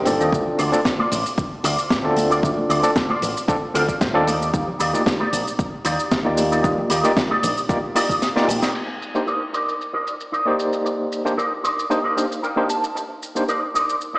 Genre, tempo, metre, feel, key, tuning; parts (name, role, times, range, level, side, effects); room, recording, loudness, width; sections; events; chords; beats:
nu-disco, nu disco; 114 BPM; 4/4; straight; C dorian; A4 = 442 Hz
overdriven tine electric piano; accompaniment; 0.0-13.4 s; Bb3 to D5; -22 LUFS; equal; fast tremolo, digital delay
electric guitar with an envelope filter; riff; 0.0-14.2 s; Eb4 to A5; -23 LUFS; equal; ensemble chorus, low-pass filter, digital delay
picked electric bass with an envelope filter; bass; 0.0-8.6 s; G1 to Eb2; -25 LUFS; equal
tight funk drum kit; drums; 0.1-14.1 s; crash cymbal, hi-hat, shaker, snare drum; -26 LUFS; equal; low-pass filter on hats, low-pass filter on cymbals, low-pass filter on snare, low-pass filter on perc, low-pass filter on room
congas; percussion; 0.1-8.6 s; -30 LUFS; equal
electronic kick drum; drums; 0.3-8.2 s; -24 LUFS; equal; overdrive
moderate plate reverb, RT60 2.1 s; played on a big sound system in a bare room, stone room reverb, small speaker sound; -18 LUFS; side -24 dB against mid
0.0-8.7 A section; 8.7-14.2 B section
clean electric guitar fill 0.0-0.3, 3.5-4.5, 7.7-8.7, 11.4-13.0; filter sweep on tine electric piano 0.0-8.7; kick drops out 8.2-8.7; drum fill 8.2-8.7; filter sweep on drum 8.7-14.2; filter sweep on clean electric guitar 8.7-14.2
0.3 Dm7; 4.3 Ebmaj7; 8.7 Cm9
| 0.33 0.85 1.38 1.91 | 2.43 2.96 3.48 4.01 | 4.54 5.06 5.59 6.12 | 6.64 7.17 7.70 8.22 | 8.75 9.27 9.80 10.33 | 10.85 11.38 11.91 12.43 | 12.96 13.48 14.01